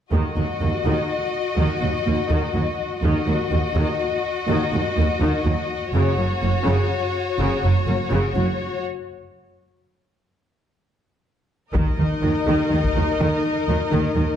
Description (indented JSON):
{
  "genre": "cinematic, epic orchestral film score",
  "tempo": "83 BPM (dotted quarters)",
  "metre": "12/8",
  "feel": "straight",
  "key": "Eb minor",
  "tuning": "A4 = 436 Hz",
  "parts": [
    { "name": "rich studio violin section", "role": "melody", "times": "0.1-8.8 s", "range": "Db5 to Eb5", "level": "-28 LUFS", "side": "left 6 dB", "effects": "none" },
    { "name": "warm symphonic violin section", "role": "second line", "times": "0.1-14.4 s", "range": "Gb4 to Eb5", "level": "-27 LUFS", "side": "left 4 dB", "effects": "none" },
    { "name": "clear symphonic viola section", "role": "accompaniment", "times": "0.1-14.4 s", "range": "Db3 to Eb4", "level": "-26 LUFS", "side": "left 1 dB", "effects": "none" },
    { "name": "warm symphonic cello section", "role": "bass", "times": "0.1-14.2 s", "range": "Eb2 to Eb3", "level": "-25 LUFS", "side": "right 1 dB", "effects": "none" },
    { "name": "warm symphonic double bass section", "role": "bass", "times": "0.1-14.3 s", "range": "Gb1 to Eb2", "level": "-24 LUFS", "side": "right 2 dB", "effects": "none" },
    { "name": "taiko ensemble", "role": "drums", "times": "11.7-13.1 s", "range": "none", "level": "-25 LUFS", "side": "left 1 dB", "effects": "none" }
  ],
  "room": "wet recital hall reverb, RT60 1.4 s",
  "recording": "dark, warm production",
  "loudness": "-19 LUFS",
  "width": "side -9 dB against mid",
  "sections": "0.1-11.7 A section; 11.7-14.4 B section",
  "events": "break 8.8-11.7; build-up 11.7-14.4",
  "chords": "0.1 Ebm; 5.9 Gb5; 11.7 Eb5"
}